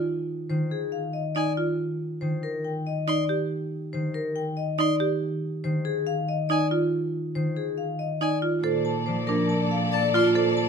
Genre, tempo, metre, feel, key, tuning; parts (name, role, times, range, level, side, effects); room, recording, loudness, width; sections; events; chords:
classical, minimalist pattern music; 140 BPM; 4/4; straight; A4 = 440 Hz
concert harp; accompaniment; 0.0-10.7 s; Eb3 to Bb3; -30 LUFS; left 1 dB
marimba with hard mallets; arpeggios; 0.0-10.6 s; D4 to A4; -27 LUFS; right 5 dB
vibraphone with hard mallets; melody; 0.5-10.7 s; Ab4 to A5; -29 LUFS; left 8 dB
rich violin; arpeggios; 1.4-10.3 s; Ab5 to C6; -32 LUFS; left 5 dB
clear studio string section; sustained chords; 8.6-10.7 s; A4 to D5; -29 LUFS; left 4 dB
rich cello; bass; 8.6-10.7 s; Bb2; -29 LUFS; right 3 dB
light reverb; -24 LUFS; side -6 dB against mid
0.0-8.6 A section; 8.6-10.7 B section
0.0 F7(no3); 1.8 Cm (rootless); 5.2 F7(no3); 8.6 Bbmaj7